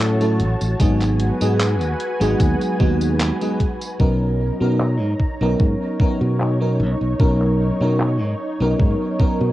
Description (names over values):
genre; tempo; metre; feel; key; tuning
vaporwave; 75 BPM; 4/4; straight; B major; A4 = 441 Hz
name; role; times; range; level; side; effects
FM electric piano with soft pad layer; accompaniment; 0.0-9.5 s; F#3 to A#4; -21 LUFS; equal; lush chorus, tape echo
soft string machine; sustained chords; 0.0-9.5 s; D#4 to A#5; -27 LUFS; equal; ensemble chorus
modern bright fingered electric bass; bass; 0.0-9.5 s; G#1 to B2; -20 LUFS; equal; none
detuned 8-bit digital drum machine; drums; 0.0-9.5 s; handclaps, hi-hat, tambourine; -28 LUFS; equal; low-pass filter on hats, cassette tape, low-pass filter on perc, low-pass filter on snare
electronic kick drum; drums; 0.8-9.4 s; none; -18 LUFS; equal; cassette tape
room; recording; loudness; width
light reverb; home recording on cassette; -17 LUFS; side -15 dB against mid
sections
0.0-4.0 A section; 4.0-9.5 B section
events
none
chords
0.0 A6; 0.8 G#m7; 4.0 Bmaj9